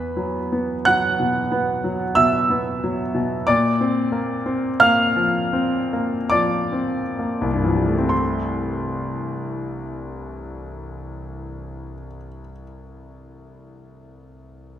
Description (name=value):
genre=classical, impressionist solo piano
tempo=32-47 BPM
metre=3/4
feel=rubato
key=unclear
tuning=A4 = 440 Hz
part: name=clear concert grand piano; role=solo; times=0.0-14.8 s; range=C2 to F#6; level=-19 LUFS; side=equal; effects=none
room=moderate scoring stage reverb, RT60 1.5 s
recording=none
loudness=-19 LUFS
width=side -10 dB against mid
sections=0.0-8.1 A section; 8.1-13.2 B section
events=slowing down 0.0-8.1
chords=0.0 Esus2; 3.5 Bbadd9; 8.1 C6